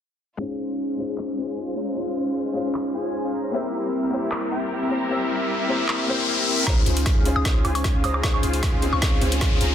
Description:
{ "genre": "future bass", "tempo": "153 BPM", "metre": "4/4", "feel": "half-time", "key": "Db lydian", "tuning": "A4 = 440 Hz", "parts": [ { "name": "warm grand piano", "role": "accompaniment", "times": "0.4-9.7 s", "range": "Ab3 to C5", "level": "-29 LUFS", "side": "left 3 dB", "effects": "sidechain pumping, low-pass filter, dub echo" }, { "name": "warm studio string section", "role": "sustained chords", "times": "0.4-9.7 s", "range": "Db3 to C5", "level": "-35 LUFS", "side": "right 1 dB", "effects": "sidechain pumping, low-pass filter" }, { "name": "soft supersaw", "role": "riff", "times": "0.4-9.7 s", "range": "C4 to Bb5", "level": "-26 LUFS", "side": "equal", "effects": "lush chorus, sidechain pumping, low-pass filter" }, { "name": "trap drum kit", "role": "drums", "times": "1.2-9.7 s", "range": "handclaps, hi-hat, snare drum, woodblock", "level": "-28 LUFS", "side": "equal", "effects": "high-pass filter on snare, high-pass filter on hats, high-pass filter on perc" }, { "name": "riser", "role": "sound effects", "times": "5.2-9.7 s", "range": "none", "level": "-28 LUFS", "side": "left 4 dB", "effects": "none" }, { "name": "mallet-like synth pluck", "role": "melody", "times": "6.7-9.3 s", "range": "Bb5 to Eb6", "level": "-29 LUFS", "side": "left 1 dB", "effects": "chorus, sidechain pumping, dub echo" }, { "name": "long sustained 808-style bass", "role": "bass", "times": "6.7-9.7 s", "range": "Db2", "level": "-25 LUFS", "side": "equal", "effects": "sidechain pumping" }, { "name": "electronic kick drum", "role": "drums", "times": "6.7-9.5 s", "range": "none", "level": "-22 LUFS", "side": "equal", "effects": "none" } ], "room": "moderate digital room reverb, RT60 1.3 s, digital ambience", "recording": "dense, heavily limited modern master, low-pass filter", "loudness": "-21 LUFS", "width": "side -9 dB against mid", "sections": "0.4-6.7 A section; 6.7-9.7 B section", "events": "filter sweep on grand piano 0.4-6.7; filter sweep 0.4-6.7; riser 5.2-6.7, 6.7-9.7; build-up 6.7-9.7; drum fill 6.7-9.7; filter sweep on supersaw synth 6.7-9.7; filter sweep on synth pluck 6.7-9.7", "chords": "0.4 Dbmaj7; 3.5 C7; 6.7 Dbmaj7" }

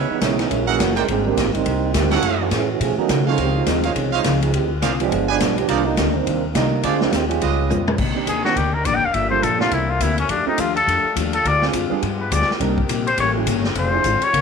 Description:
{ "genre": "jazz, big band swing", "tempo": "208 BPM", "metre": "4/4", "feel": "swing 61% on 8ths", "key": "C minor", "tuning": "A4 = 439 Hz", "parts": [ { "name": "mellow trombone section", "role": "second line", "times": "0.0-7.8 s", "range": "D3 to A#4", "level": "-21 LUFS", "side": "right 9 dB", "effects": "none" }, { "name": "fingerpicked plugged-in steel-string acoustic guitar", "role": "accompaniment", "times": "0.0-14.4 s", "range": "F#2 to Bb4", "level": "-27 LUFS", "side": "left 14 dB", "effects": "none" }, { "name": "bright trumpet section", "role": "stabs", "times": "0.0-7.8 s", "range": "Eb4 to Ab5", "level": "-26 LUFS", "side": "right 8 dB", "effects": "none" }, { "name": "upright bass", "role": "bass", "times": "0.0-14.4 s", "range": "Eb1 to C#3", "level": "-24 LUFS", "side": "left 1 dB", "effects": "none" }, { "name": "warm grand piano", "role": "accompaniment", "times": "0.2-14.0 s", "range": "Eb3 to Bb4", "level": "-27 LUFS", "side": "right 12 dB", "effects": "none" }, { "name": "swinging big-band drum kit", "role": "drums", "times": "0.2-14.4 s", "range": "crash cymbal, hi-hat, kick drum, ride cymbal, snare drum, toms", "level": "-25 LUFS", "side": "left 1 dB", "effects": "none" }, { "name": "mellow saxophone section", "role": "sustained chords", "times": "8.0-14.4 s", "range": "C3 to G4", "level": "-30 LUFS", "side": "left 2 dB", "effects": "none" }, { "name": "trumpet with straight mute", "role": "melody", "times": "8.3-14.4 s", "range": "Db4 to G5", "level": "-20 LUFS", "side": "left 3 dB", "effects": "none" } ], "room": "moderate echo chamber reverb, RT60 1.7 s, studio reverb", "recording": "1960s-style stereo with parts hard left and right", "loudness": "-17 LUFS", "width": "side -5 dB against mid", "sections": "0.0-8.0 A section; 8.0-14.4 B section", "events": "trombone section solo 0.0-8.0; drum fill 7.7; muted trumpet solo 8.0-14.4", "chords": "0.5 F#9; 1.1 Abmaj9#11; 2.2 F#m7; 2.8 B9; 3.4 Dbmaj9; 4.5 Dm7b5; 5.1 G7b9; 5.7 Cm9; 6.8 Dm7b5; 7.4 Db7#11; 8.0 Cm9; 9.1 Gm7; 9.7 C9; 10.3 F69; 11.4 Dm7b5; 12.0 G7b9; 12.6 Cm7; 13.2 A7b9; 13.8 Dm7b5" }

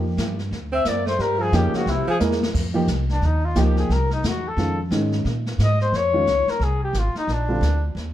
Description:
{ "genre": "jazz, small-group swing and bop", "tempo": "177 BPM", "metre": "4/4", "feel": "swing 62% on 8ths", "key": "F minor", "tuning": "A4 = 442 Hz", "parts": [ { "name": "warm baby grand piano", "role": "accompaniment", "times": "0.0-7.6 s", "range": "D3 to Bb4", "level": "-24 LUFS", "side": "right 1 dB", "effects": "none" }, { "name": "upright bass", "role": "bass", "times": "0.0-8.1 s", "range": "Ab1 to Bb2", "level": "-22 LUFS", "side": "equal", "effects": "none" }, { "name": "jazz brush drum kit", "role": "drums", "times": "0.2-8.1 s", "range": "brushed snare drum, crash cymbal, hi-hat, kick drum, snare drum", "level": "-30 LUFS", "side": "left 1 dB", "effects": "none" }, { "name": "clear flugelhorn", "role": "melody", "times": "0.7-7.9 s", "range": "D4 to E5", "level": "-24 LUFS", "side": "left 3 dB", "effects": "none" }, { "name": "breathy tenor saxophone", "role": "second line", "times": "0.7-2.2 s", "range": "C3 to C4", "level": "-26 LUFS", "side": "right 3 dB", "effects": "none" } ], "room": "light reverb", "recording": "dark, warm production", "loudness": "-19 LUFS", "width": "side -12 dB against mid", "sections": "0.0-2.5 A section; 2.5-8.1 B section", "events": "drum fill 2.2-2.5; flugelhorn solo 2.5-8.1", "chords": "0.0 F9sus4; 0.5 D; 1.2 Fm11; 1.9 C7b13; 2.5 F5; 3.9 C7#9; 4.6 F7alt; 5.3 Bbm7; 6.6 Abmaj7; 7.3 Bb69" }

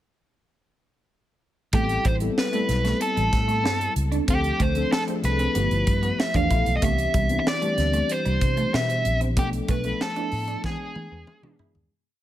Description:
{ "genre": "polished 1980s jazz-funk pop", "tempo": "94 BPM", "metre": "4/4", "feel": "straight", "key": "A minor", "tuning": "A4 = 437 Hz", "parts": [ { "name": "nasal lead guitar with a parked wah", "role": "melody", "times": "1.7-11.6 s", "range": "G4 to F5", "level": "-26 LUFS", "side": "equal", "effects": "overdrive" }, { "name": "mellow tine electric piano", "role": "accompaniment", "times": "1.7-11.9 s", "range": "E3 to A4", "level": "-28 LUFS", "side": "left 3 dB", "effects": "analog chorus" }, { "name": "clean electric guitar", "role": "riff", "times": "1.7-11.7 s", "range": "G3 to E4", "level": "-32 LUFS", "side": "right 5 dB", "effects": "wide subtle chorus" }, { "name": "vintage muted fingered electric bass", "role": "bass", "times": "1.7-11.9 s", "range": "G1 to E3", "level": "-26 LUFS", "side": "equal", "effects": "none" }, { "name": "crisp fusion drum kit", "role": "drums", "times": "1.7-11.9 s", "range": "hi-hat, kick drum, snare drum, toms", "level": "-27 LUFS", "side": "equal", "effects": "none" } ], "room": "small room reverb", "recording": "none", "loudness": "-21 LUFS", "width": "side -13 dB against mid", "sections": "1.7-11.9 verse", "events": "fade-out 9.4-11.9; drum fill 10.6-11.9", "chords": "1.7 Am9; 4.3 Dm7; 5.6 G13; 6.8 Cmaj9; 9.4 Bm7b5; 10.6 E7" }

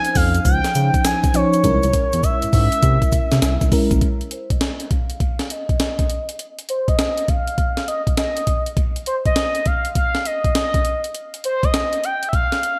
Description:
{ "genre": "R&B, new jack swing", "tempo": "101 BPM", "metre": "4/4", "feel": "swing 65% on 16ths", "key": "unclear", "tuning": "A4 = 440 Hz", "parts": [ { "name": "expressive synth lead", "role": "melody", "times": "0.0-12.8 s", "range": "C5 to Ab5", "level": "-24 LUFS", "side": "equal", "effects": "chorus, low-pass filter, digital delay" }, { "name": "FM electric piano with soft pad layer", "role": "accompaniment", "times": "0.0-4.0 s", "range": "F3 to C5", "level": "-25 LUFS", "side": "equal", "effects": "chorus, tremolo" }, { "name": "breakbeat sampler-style drum kit", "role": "drums", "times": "0.0-12.8 s", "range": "hi-hat, kick drum, snare drum, tambourine", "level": "-22 LUFS", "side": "equal", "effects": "gated reverb" }, { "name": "tube shaker", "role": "percussion", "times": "0.0-4.0 s", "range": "none", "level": "-38 LUFS", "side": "equal", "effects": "none" }, { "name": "smooth synth bass", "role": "bass", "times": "0.2-4.0 s", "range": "Bb1 to Db3", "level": "-21 LUFS", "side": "equal", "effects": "none" } ], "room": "light reverb", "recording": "bright 1980s-style digital production", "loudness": "-19 LUFS", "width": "mono", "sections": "0.0-4.0 A section; 4.0-12.8 B section", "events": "drum fill 1.6-4.0; filter sweep on analog synth lead 4.0-12.8", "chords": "0.0 Dbmaj9; 1.6 C7b9b13; 4.0 N.C." }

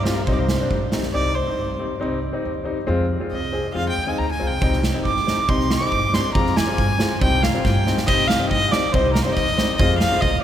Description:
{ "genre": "klezmer", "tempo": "139 BPM", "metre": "2/4", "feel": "straight", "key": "C minor", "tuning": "A4 = 440 Hz", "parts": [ { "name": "warm violin", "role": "melody", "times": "0.0-10.4 s", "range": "Bb4 to D6", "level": "-23 LUFS", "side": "equal", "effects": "none" }, { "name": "clear upright piano", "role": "accompaniment", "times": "0.0-10.3 s", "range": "G3 to Ab4", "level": "-25 LUFS", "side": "left 3 dB", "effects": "none" }, { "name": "upright bass", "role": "bass", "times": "0.0-10.4 s", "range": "C2 to G2", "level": "-24 LUFS", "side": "equal", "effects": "none" }, { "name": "big rock drum kit", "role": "drums", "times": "0.1-1.1, 4.6-10.3 s", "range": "crash cymbal, kick drum, snare drum", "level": "-23 LUFS", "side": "right 2 dB", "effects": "none" } ], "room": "wet cathedral reverb, RT60 6.6 s", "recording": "recorded in a church or concert hall", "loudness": "-18 LUFS", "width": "side -10 dB against mid", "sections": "0.0-1.1 A section; 1.1-8.1 B section; 8.1-10.4 C section", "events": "violin solo 1.1-8.1; drum fill 7.6-8.1", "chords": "0.0 Cm; 2.9 Fm; 4.6 Cm; 6.3 Fm; 7.2 Cm; 9.8 Fm" }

